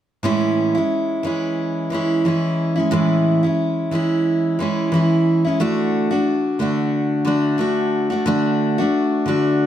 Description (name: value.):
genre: pop.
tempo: 90 BPM.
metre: 4/4.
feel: swing 55% on 16ths.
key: A major.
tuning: A4 = 439 Hz.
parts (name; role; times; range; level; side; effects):
picked steel-string acoustic guitar; accompaniment; 0.2-9.7 s; A2 to F#4; -17 LUFS; equal; none.
room: moderate studio reverb, RT60 0.6 s.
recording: none.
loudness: -17 LUFS.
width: side -10 dB against mid.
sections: 0.2-9.7 A section.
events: none.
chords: 0.2 Amaj7; 5.6 D.